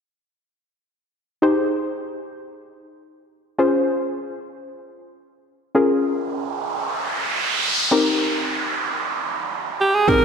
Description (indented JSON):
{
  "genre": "pop",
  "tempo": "111 BPM",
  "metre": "4/4",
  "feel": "straight",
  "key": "Ab major",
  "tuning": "A4 = 440 Hz",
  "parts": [
    { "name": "soft round pluck", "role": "accompaniment", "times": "1.4-10.2 s", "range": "C4 to C5", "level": "-20 LUFS", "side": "left 2 dB", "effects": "chorus" },
    { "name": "noise sweep and impact", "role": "sound effects", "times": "6.2-10.2 s", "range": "none", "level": "-22 LUFS", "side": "right 2 dB", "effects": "none" },
    { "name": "bright alto saxophone", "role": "melody", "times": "9.8-10.2 s", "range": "G4 to Bb4", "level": "-15 LUFS", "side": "right 3 dB", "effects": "none" }
  ],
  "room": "wet church reverb, RT60 2.7 s",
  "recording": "dreamy mix soaked in reverb",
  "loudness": "-19 LUFS",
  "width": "side -6 dB against mid",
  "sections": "1.4-10.1 A section",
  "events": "noise sweep 6.2-10.1; impact 10.1",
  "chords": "1.4 Abmaj7; 3.6 Dbmaj7; 5.8 Bbm7; 7.9 Cm7"
}